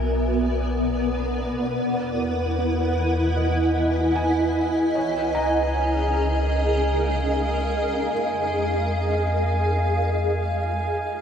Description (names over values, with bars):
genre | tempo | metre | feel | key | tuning
ambient | 76 BPM | 4/4 | straight | unclear | A4 = 438 Hz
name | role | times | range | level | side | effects
granular cloud pad | sustained chords | 0.0-11.2 s | B3 to G#5 | -22 LUFS | equal | built-in reverb, ensemble chorus, shimmer reverb
warm sub bass | bass | 0.0-11.2 s | B1 to F2 | -26 LUFS | equal | none
felt-muted upright piano | arpeggios | 2.6-8.1 s | B3 to Bb5 | -34 LUFS | equal | ping-pong delay, shimmer reverb
glass harmonica | texture | 4.9-11.2 s | Ab5 | -29 LUFS | right 2 dB | shimmer reverb
room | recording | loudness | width
wet plate reverb, RT60 2.8 s | dreamy mix soaked in reverb | -20 LUFS | side -8 dB against mid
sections
0.0-11.2 A section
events
fade-in on felt piano 0.0-11.2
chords
0.0 Bm; 1.8 Emaj7; 5.0 Db6; 8.1 Fm7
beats
0.22 1.01 | 1.80 2.59 3.38 4.17 | 4.96 5.75 6.54 7.33 | 8.12 8.91 9.70 10.48